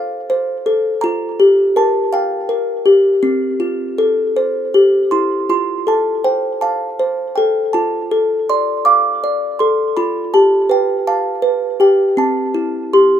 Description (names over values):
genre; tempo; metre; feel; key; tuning
children's music, lullaby; 54 BPM (dotted quarters); 6/8; rubato; F major; A4 = 440 Hz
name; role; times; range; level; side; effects
music box; solo; 0.0-13.2 s; C4 to D6; -13 LUFS; equal; none
room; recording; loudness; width
light reverb; rough home demo mix; -13 LUFS; side -9 dB against mid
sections
0.0-5.5 A section; 5.5-13.2 B section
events
none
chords
0.0 F; 1.0 Gm7; 3.2 F/C; 4.4 C; 5.5 F; 7.7 Dm/F; 10.0 G7; 12.2 C